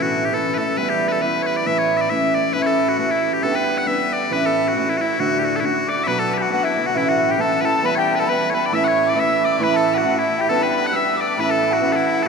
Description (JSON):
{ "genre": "celtic folk", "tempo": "136 BPM", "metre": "2/4", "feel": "swing 55% on 8ths", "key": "unclear", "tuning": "A4 = 440 Hz", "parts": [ { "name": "loud bright bagpipes", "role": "melody", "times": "0.0-12.3 s", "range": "E4 to F#5", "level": "-21 LUFS", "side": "left 3 dB", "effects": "none" }, { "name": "fingerpicked acoustic archtop guitar", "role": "accompaniment", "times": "0.0-12.3 s", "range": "D2 to G4", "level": "-19 LUFS", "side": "right 2 dB", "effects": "none" }, { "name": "wooden whistle", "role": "second line", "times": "5.9-12.3 s", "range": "E5 to F#6", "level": "-24 LUFS", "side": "left 5 dB", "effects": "none" } ], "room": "wet cathedral reverb, RT60 6.3 s", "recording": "recorded in a church or concert hall", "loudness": "-17 LUFS", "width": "side -5 dB against mid", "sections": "0.0-6.1 A section; 6.1-12.3 A section", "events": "none", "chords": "0.0 A; 0.8 Em; 1.7 A; 3.4 G; 4.3 A; 5.2 D; 6.1 Bm7; 7.0 A; 7.8 Em; 8.7 A; 10.5 G; 11.4 A" }